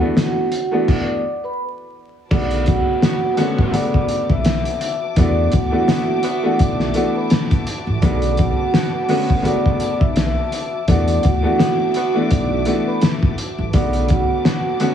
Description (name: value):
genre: hip hop, boom-bap hip-hop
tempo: 84 BPM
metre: 4/4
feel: swing 56% on 16ths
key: B minor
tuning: A4 = 441 Hz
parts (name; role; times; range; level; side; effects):
- vibraphone with soft mallets; melody; 0.0-14.9 s; F#4 to E6; -23 LUFS; equal; high-pass filter, low-pass filter, tape echo
- warm upright piano; accompaniment; 0.0-14.9 s; C#3 to F#4; -21 LUFS; equal; cassette tape, high-pass filter, low-pass filter
- cloth-damped thuddy drum kit; drums; 0.2-14.9 s; crash cymbal, hi-hat, kick drum, snare drum; -19 LUFS; equal; none
- warm studio string section; sustained chords; 2.3-14.9 s; F#4 to D6; -31 LUFS; right 1 dB; high-pass filter, low-pass filter
- upright bass; bass; 2.3-14.2 s; A1 to E2; -21 LUFS; equal; none
- bright saxophone section; stabs; 3.0-14.9 s; B3 to F#4; -28 LUFS; right 4 dB; high-pass filter, low-pass filter, tape echo
room: light reverb, studio reverb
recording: heavily compressed radio sound, vinyl crackle, small room ambience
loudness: -16 LUFS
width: side -9 dB against mid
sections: 0.0-2.3 A section; 2.3-14.9 B section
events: stop 0.9-2.3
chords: 0.0 E9sus4; 2.3 Bm7; 5.2 E9sus4; 8.0 Bm7; 10.9 E9sus4; 13.7 Bm7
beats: 0.17 0.88 1.60 | 2.31 3.02 3.74 4.45 | 5.17 5.88 6.60 7.31 | 8.03 8.74 9.45 10.17 | 10.88 11.60 12.31 13.03 | 13.74 14.45